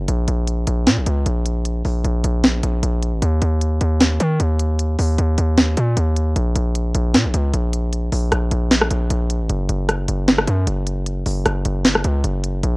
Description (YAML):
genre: hip hop, trap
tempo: 153 BPM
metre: 4/4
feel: half-time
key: unclear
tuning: A4 = 442 Hz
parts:
  - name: distorted 808-style bass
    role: bass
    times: 0.0-12.8 s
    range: Gb1 to Eb3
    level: -18 LUFS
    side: equal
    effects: distortion
  - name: trap drum kit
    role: drums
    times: 0.1-12.7 s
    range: hi-hat, rim click, snare drum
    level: -18 LUFS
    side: equal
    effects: cassette tape
room: digital ambience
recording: home recording on cassette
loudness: -16 LUFS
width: side -27 dB against mid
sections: 0.0-12.8 A section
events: none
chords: none